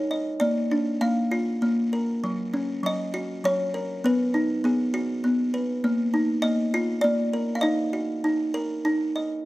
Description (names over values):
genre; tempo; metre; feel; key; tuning
children's music, lullaby; 99 BPM; 3/4; straight; Eb minor; A4 = 440 Hz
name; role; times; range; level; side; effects
buzzing kalimba; solo; 0.0-9.5 s; Gb3 to F5; -23 LUFS; equal; none
room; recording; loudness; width
light reverb; close, detailed microphones; -22 LUFS; side -17 dB against mid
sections
0.0-9.5 A section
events
none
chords
0.4 Bb; 2.2 Gb; 4.0 B; 5.8 Bbsus4; 7.0 N.C.; 7.6 Ebm